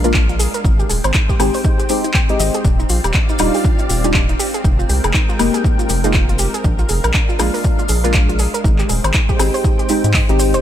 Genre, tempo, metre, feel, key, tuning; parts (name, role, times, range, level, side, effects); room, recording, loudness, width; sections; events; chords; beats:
deep house; 120 BPM; 4/4; swing 59% on 16ths; A4 = 440 Hz
soft string machine; sustained chords; 0.0-10.6 s; Ab3 to G5; -25 LUFS; equal; ensemble chorus, sidechain pumping
soft round pluck; arpeggios; 0.0-10.6 s; D4 to G5; -24 LUFS; right 3 dB; chorus, vintage 12-bit sampler grit, sidechain pumping, ping-pong delay
deep mellow chord stab; stabs; 0.0-10.6 s; G3 to G4; -20 LUFS; left 1 dB; chorus, phaser, vintage 12-bit sampler grit, sidechain pumping, ping-pong delay
round analog bass; bass; 0.0-10.6 s; Eb1 to Ab2; -18 LUFS; equal; tube saturation, sidechain pumping
deep house drum kit; drums; 0.0-10.6 s; handclaps, hi-hat, woodblock; -22 LUFS; left 1 dB
maracas; percussion; 0.0-10.6 s; -27 LUFS; left 3 dB
electronic kick drum; drums; 0.1-10.3 s; -16 LUFS; equal
digital ambience; -13 LUFS; side -11 dB against mid
0.0-10.6 A section
0.0 Bb7; 0.6 Abmaj7; 2.6 Ebmaj9; 4.4 Fm11; 6.6 Bb7; 8.6 Abmaj7
0.14 | 0.65 1.15 1.65 2.15 | 2.65 3.15 3.65 4.14 | 4.64 5.14 5.64 6.14 | 6.64 7.14 7.64 8.14 | 8.64 9.14 9.64 10.14